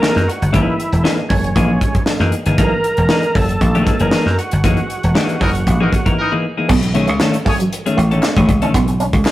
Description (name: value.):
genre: funk.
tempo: 117 BPM.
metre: 4/4.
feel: straight.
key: F# mixolydian.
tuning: A4 = 440 Hz.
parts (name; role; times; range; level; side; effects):
overdriven tonewheel organ; melody; 0.0-6.1 s; C#4 to A#4; -21 LUFS; right 1 dB; chorus vibrato.
clean electric guitar; accompaniment; 0.0-8.7 s; D#3 to A#4; -19 LUFS; left 2 dB; spring reverb.
crisp fusion drum kit; drums; 0.0-9.3 s; crash cymbal, hi-hat, kick drum, snare drum; -18 LUFS; equal; none.
dry thumbed slap bass; bass; 0.2-9.2 s; E1 to F#2; -16 LUFS; equal; none.
clear horn section; second line; 5.4-7.6 s; E3 to C#5; -21 LUFS; left 1 dB; none.
electric guitar with an envelope filter; riff; 6.7-9.1 s; F#3 to C#4; -21 LUFS; right 3 dB; none.
group handclap; percussion; 7.2-9.3 s; none; -28 LUFS; left 1 dB; none.
room: moderate stone room reverb, RT60 0.9 s.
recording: rough rehearsal-room recording.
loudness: -13 LUFS.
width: side -15 dB against mid.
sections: 0.0-6.7 A section; 6.7-9.3 B section.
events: band accent 4.6-6.7; break 6.2-6.7.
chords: 0.0 F#13; 6.7 B13.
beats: 0.02 | 0.53 1.05 1.56 2.07 | 2.59 3.10 3.61 4.12 | 4.64 5.15 5.66 6.18 | 6.69 7.20 7.71 8.23 | 8.74 9.25.